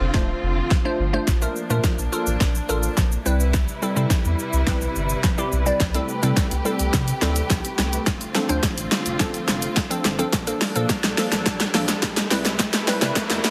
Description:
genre	dance-pop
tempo	106 BPM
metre	4/4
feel	straight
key	C major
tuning	A4 = 439 Hz
part	muted symphonic string section	sustained chords	0.0-13.5 s	C3 to B4	-31 LUFS	equal	sidechain pumping
part	warm sub bass	bass	0.0-13.4 s	D1 to C3	-27 LUFS	equal	sidechain pumping
part	glassy wavetable pluck	accompaniment	0.1-13.5 s	F3 to D5	-29 LUFS	equal	chorus, sidechain pumping
part	pop drum kit	drums	0.1-13.5 s	hi-hat, kick drum, shaker, snare drum	-24 LUFS	equal	soft clipping on snare
part	riser	sound effects	10.6-13.5 s	none	-36 LUFS	equal	none
room	light reverb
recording	dense, heavily limited modern master, high-pass filter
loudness	-22 LUFS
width	mono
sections	0.0-13.5 A section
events	build-up 0.0-13.5; drum fill 0.0-13.5; filter sweep 0.0-13.5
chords	0.0 Dm7; 1.3 Bbmaj7; 3.3 Cmaj7; 5.8 Am7/C; 8.1 Dm7; 10.3 Bbmaj7; 12.3 Cmaj7

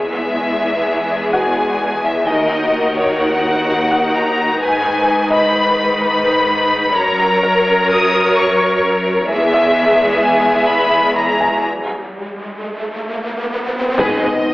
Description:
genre	cinematic, hybrid orchestral and electronic film score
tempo	128 BPM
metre	5/4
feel	straight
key	G# minor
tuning	A4 = 444 Hz
part	rich studio violin section	melody	0.0-14.5 s	C#5 to D#6	-17 LUFS	left 1 dB	none
part	rich symphonic violin section	second line	0.0-14.3 s	F#4 to E5	-18 LUFS	left 1 dB	none
part	clear symphonic viola section	accompaniment	0.0-14.3 s	D#3 to A#4	-21 LUFS	equal	none
part	rich symphonic cello section	bass	0.0-14.3 s	D#2 to G#2	-22 LUFS	equal	none
part	felt-muted upright piano	texture	1.3-11.7 s	F#4 to G#5	-22 LUFS	equal	tape echo
part	riser and impact	sound effects	11.5-14.5 s	none	-23 LUFS	equal	none
part	mellow French horn section	sustained chords	14.0-14.5 s	B3 to D#4	-19 LUFS	left 1 dB	none
part	rich chamber double bass section	bass	14.0-14.3 s	G#1	-30 LUFS	equal	none
part	taiko ensemble	drums	14.0-14.4 s	none	-22 LUFS	equal	none
room	wet scoring stage reverb, RT60 1.5 s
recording	telephone sound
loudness	-13 LUFS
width	side -18 dB against mid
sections	0.0-14.0 A section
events	riser 11.5-14.0; break 11.6-14.0; impact 14.0-14.5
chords	0.0 E; 2.3 D#m; 4.6 G#m; 7.0 F#; 9.3 E; 11.6 N.C.; 14.0 G#m

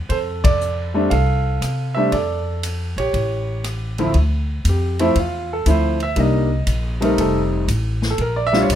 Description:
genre	jazz piano trio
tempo	119 BPM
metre	4/4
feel	swing 68% on 8ths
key	F major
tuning	A4 = 440 Hz
part	upright bass	bass	0.0-8.8 s	F1 to C3	-21 LUFS	equal	none
part	warm concert grand piano	melody	0.1-8.8 s	D2 to F5	-20 LUFS	right 1 dB	none
part	swinging big-band drum kit	drums	0.1-8.8 s	hi-hat, kick drum, ride cymbal, rim click, snare drum	-25 LUFS	left 1 dB	none
room	light reverb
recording	minimal, uncompressed stereo recording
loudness	-17 LUFS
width	side -10 dB against mid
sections	0.0-4.1 A section; 4.1-8.8 B section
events	band accent 0.3; grand piano solo 4.1-8.8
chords	0.1 F6; 3.1 A7; 4.1 Dm7; 6.2 Cm7; 7.2 F7; 8.2 Bb6

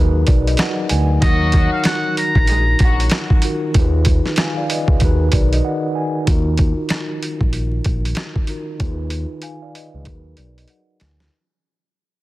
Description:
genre	hip hop, boom-bap hip-hop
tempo	95 BPM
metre	4/4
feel	swing 61% on 16ths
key	Eb harmonic minor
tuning	A4 = 439 Hz
part	mellow tine electric piano	accompaniment	0.0-11.3 s	Eb3 to Ab5	-23 LUFS	equal	medium stereo tremolo, high-pass filter, low-pass filter
part	smooth gliding synth bass	bass	0.0-11.3 s	Bb1 to Eb2	-18 LUFS	equal	none
part	boom bap sampler-style drum kit	drums	0.3-11.3 s	hi-hat, kick drum, rim click, snare drum	-17 LUFS	equal	none
part	trumpet with metal mute	melody	1.2-3.1 s	Eb5 to Bb5	-21 LUFS	equal	high-pass filter, low-pass filter, digital delay
part	warm studio string section	stabs	1.2-3.3 s	Gb3 to Ab4	-26 LUFS	left 3 dB	high-pass filter, low-pass filter, digital delay
room	light reverb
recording	dense, heavily limited modern master, vinyl crackle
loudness	-15 LUFS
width	side -17 dB against mid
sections	0.0-6.3 A section; 6.3-11.3 B section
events	break 5.6-6.3; fade-out 6.3-11.3; filter sweep on tine electric piano 6.3-11.3; drum fill 8.8-11.3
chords	0.0 Abm9; 1.2 Ebmadd9; 3.7 Fm7b5/Eb; 5.0 Abm9; 6.3 Ebmadd9; 8.8 Fm7b5/Eb; 10.1 Abm9

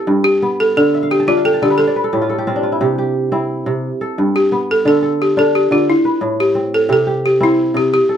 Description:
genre	west african traditional, West African string and xylophone music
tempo	117 BPM (dotted quarters)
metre	12/8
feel	straight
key	C major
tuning	A4 = 440 Hz
part	balafon	melody	0.0-8.2 s	E4 to A4	-14 LUFS	equal	plate reverb
part	kora	arpeggios	0.0-8.2 s	G2 to A5	-16 LUFS	equal	none
room	moderate studio reverb, RT60 0.5 s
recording	dark, warm production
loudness	-13 LUFS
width	side -9 dB against mid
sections	0.0-8.2 A section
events	kora fill 0.9-2.8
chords	0.0 G; 0.8 N.C.; 1.8 Am; 2.8 C; 3.8 G; 4.9 Dm; 5.9 Am; 6.9 C

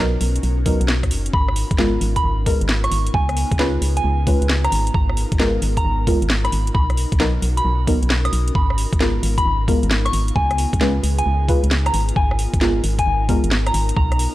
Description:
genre	UK garage, two-step garage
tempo	133 BPM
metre	4/4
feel	swing 66% on 16ths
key	G# dorian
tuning	A4 = 436 Hz
part	ethereal airy pad	sustained chords	0.2-14.3 s	B3 to A#4	-31 LUFS	equal	ensemble chorus, built-in reverb, sidechain pumping
part	deep mellow chord stab	stabs	0.0-13.4 s	F#3 to B4	-24 LUFS	equal	chorus, analog delay
part	organ-like FM bass	bass	0.0-14.3 s	F#1 to C#2	-20 LUFS	equal	tube saturation
part	garage drum kit	drums	0.2-14.3 s	hi-hat, rim click, snare drum	-25 LUFS	equal	studio reverb
part	electronic kick drum	drums	0.7-14.1 s	none	-20 LUFS	equal	studio reverb
part	soft synth bell	melody	1.3-14.3 s	G#5 to D#6	-24 LUFS	equal	chorus, phaser
room	digital ambience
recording	dry, gritty hardware recording, transformer saturation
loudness	-16 LUFS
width	side -16 dB against mid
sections	0.0-14.3 A section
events	none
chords	0.0 Bmaj7; 1.3 G#m69; 3.1 C#7; 4.7 G#m69; 6.8 Bmaj7; 8.6 G#m69; 10.4 C#7; 11.9 G#m69

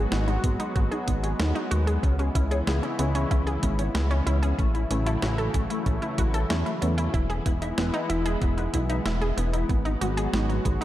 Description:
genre	synthwave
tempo	94 BPM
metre	4/4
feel	straight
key	C# minor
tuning	A4 = 439 Hz
part	warm analog pad	sustained chords	0.0-10.8 s	C#3 to F#4	-31 LUFS	left 1 dB	chorus, sidechain pumping
part	analog pluck	arpeggios	0.0-10.8 s	B3 to A4	-32 LUFS	right 2 dB	chorus, tape echo
part	chorused synth bass	bass	0.0-10.8 s	E1 to E2	-26 LUFS	equal	sidechain pumping
part	mellow electric guitar	riff	0.1-10.8 s	G#3 to E5	-34 LUFS	left 3 dB	ensemble chorus, low-pass filter, tape echo
part	clean 12-bit digital drum machine	drums	0.1-10.8 s	hi-hat, snare drum	-33 LUFS	equal	none
part	electronic kick drum	drums	0.4-10.8 s	none	-26 LUFS	equal	none
room	moderate scoring stage reverb, RT60 1.8 s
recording	dark, warm production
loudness	-23 LUFS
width	side -14 dB against mid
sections	0.0-10.8 A section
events	filter sweep on clean electric guitar 0.0-10.8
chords	0.0 G#m7; 2.0 C#m7; 4.6 A6; 7.1 Emaj7; 9.7 G#m7

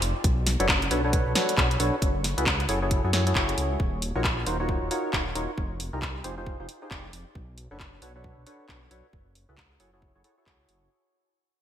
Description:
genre	UK garage, two-step garage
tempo	135 BPM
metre	4/4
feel	swing 61% on 16ths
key	unclear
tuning	A4 = 440 Hz
part	dark detuned saw bass	bass	0.0-10.9 s	Eb1 to Gb2	-29 LUFS	equal	none
part	garage drum kit	drums	0.0-10.8 s	handclaps, hi-hat, snare drum	-28 LUFS	equal	gated reverb
part	electronic kick drum	drums	0.2-10.6 s	none	-28 LUFS	equal	none
part	percussive organ stab	stabs	0.6-10.9 s	D4 to D5	-29 LUFS	equal	analog chorus, digital delay
room	moderate lush hall reverb, RT60 2.1 s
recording	bright 1980s-style digital production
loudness	-23 LUFS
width	side -10 dB against mid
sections	0.0-10.9 A section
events	fade-out 0.0-10.9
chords	0.2 Bm9; 2.0 Gbm9; 3.8 Ebm9; 5.6 Fm9; 7.4 Bm9; 9.1 Gbm9

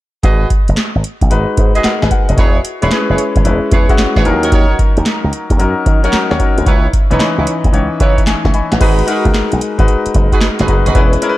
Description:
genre	R&B, new jack swing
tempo	112 BPM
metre	4/4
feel	swing 66% on 16ths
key	G# minor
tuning	A4 = 444 Hz
part	warm horn section	stabs	0.2-11.0 s	D#4 to D#5	-20 LUFS	right 4 dB	none
part	slap bass with an envelope filter	bass	0.2-11.1 s	E1 to D#3	-16 LUFS	equal	none
part	booming analog drum machine	drums	0.2-11.4 s	crash cymbal, handclaps, hi-hat, kick drum, snare drum	-13 LUFS	equal	overdrive
part	clear concert grand piano	accompaniment	1.3-11.4 s	E3 to C#6	-16 LUFS	left 3 dB	none
room	digital ambience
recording	dark, warm production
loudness	-10 LUFS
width	side -16 dB against mid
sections	0.2-8.8 A section; 8.8-11.4 B section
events	grand piano fill 7.7-8.8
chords	0.2 G#m7; 2.4 E6; 4.3 D#m7; 6.7 C#m9; 8.8 G#m7

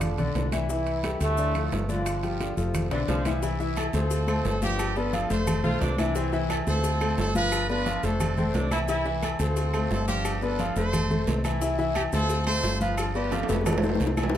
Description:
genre	latin, salsa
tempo	176 BPM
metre	4/4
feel	straight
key	C major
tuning	A4 = 436 Hz
part	mellow trombone section	melody	0.0-3.1 s	A2 to F4	-32 LUFS	right 2 dB	tape echo
part	clear grand piano	accompaniment	0.0-14.4 s	D3 to F5	-28 LUFS	left 3 dB	none
part	fingered electric bass	bass	0.0-14.4 s	F1 to D2	-29 LUFS	equal	none
part	bongos and cowbell	percussion	0.0-14.4 s	none	-37 LUFS	left 5 dB	none
part	claves	percussion	0.0-14.3 s	none	-44 LUFS	left 3 dB	none
part	congas	percussion	0.0-14.4 s	none	-33 LUFS	right 1 dB	none
part	guiro	percussion	0.0-14.4 s	none	-44 LUFS	right 7 dB	none
part	maracas	percussion	0.0-14.3 s	none	-45 LUFS	left 7 dB	none
part	timbales and agogo bells	percussion	0.0-14.4 s	none	-34 LUFS	right 4 dB	none
part	clear saxophone section	second line	2.9-3.4, 5.6-9.1 s	E3 to F4	-34 LUFS	right 2 dB	none
part	brilliant horn section	melody	3.8-13.8 s	B3 to C5	-31 LUFS	right 1 dB	none
room	moderate large studio reverb, RT60 1.4 s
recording	none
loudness	-24 LUFS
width	side -11 dB against mid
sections	0.0-3.4 A section; 3.4-14.3 B section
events	drum fill 2.9-3.4, 13.3-14.3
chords	0.0 F6; 0.7 C6; 1.4 Dm; 2.1 G5; 2.7 F6; 3.4 C6; 4.1 Dm7; 4.8 G7; 5.5 F; 6.2 C6; 6.8 Dm7; 7.5 G7; 8.2 F6; 8.9 C6; 9.6 Dm7; 10.2 G7; 10.9 F; 11.6 C6; 12.3 Dm7; 13.0 G7; 13.7 F6

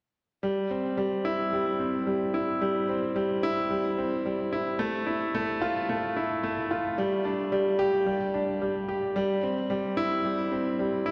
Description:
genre	electronica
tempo	110 BPM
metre	4/4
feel	straight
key	unclear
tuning	A4 = 439 Hz
part	clear concert grand piano	riff	0.4-11.1 s	G3 to G4	-28 LUFS	equal	delay
room	wet cathedral reverb, RT60 6.8 s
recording	dreamy mix soaked in reverb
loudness	-28 LUFS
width	mono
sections	0.4-11.1 A section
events	none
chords	none

